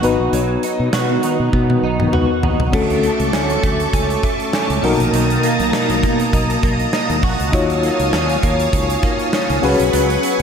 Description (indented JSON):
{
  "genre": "1980s-style pop",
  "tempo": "100 BPM",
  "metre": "4/4",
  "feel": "swing 55% on 16ths",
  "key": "unclear",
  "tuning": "A4 = 440 Hz",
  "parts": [
    { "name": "FM electric piano with tremolo", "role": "accompaniment", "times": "0.0-10.4 s", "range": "B2 to C#5", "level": "-20 LUFS", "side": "left 4 dB", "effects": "none" },
    { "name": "direct-recorded clean electric guitar", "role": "riff", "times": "0.0-10.4 s", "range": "D#3 to F#4", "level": "-22 LUFS", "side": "right 4 dB", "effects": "ensemble chorus, tape echo" },
    { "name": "fretless electric bass", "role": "bass", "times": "0.0-10.4 s", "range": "G#1 to B2", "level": "-21 LUFS", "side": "equal", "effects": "none" },
    { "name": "big rock drum kit", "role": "drums", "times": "0.0-10.4 s", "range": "crash cymbal, hi-hat, kick drum, snare drum, toms", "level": "-21 LUFS", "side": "equal", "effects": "none" },
    { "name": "mellow synth brass", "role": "stabs", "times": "1.1-2.3 s", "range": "D#3 to F#4", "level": "-24 LUFS", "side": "right 2 dB", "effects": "chorus, phaser" },
    { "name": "string machine, violins", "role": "sustained chords", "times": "2.7-10.4 s", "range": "A#3 to D#6", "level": "-20 LUFS", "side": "right 1 dB", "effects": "ensemble chorus" }
  ],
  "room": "wet lush hall reverb, RT60 2.6 s",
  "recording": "dreamy mix soaked in reverb",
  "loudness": "-14 LUFS",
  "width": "side -7 dB against mid",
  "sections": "0.0-2.7 A section; 2.7-10.4 B section",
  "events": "band accent 0.3-2.7; drum fill 1.5-2.7",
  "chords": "0.0 B; 2.7 Dmaj7; 4.8 Bmaj7; 7.5 D#m9; 9.6 C#7sus4"
}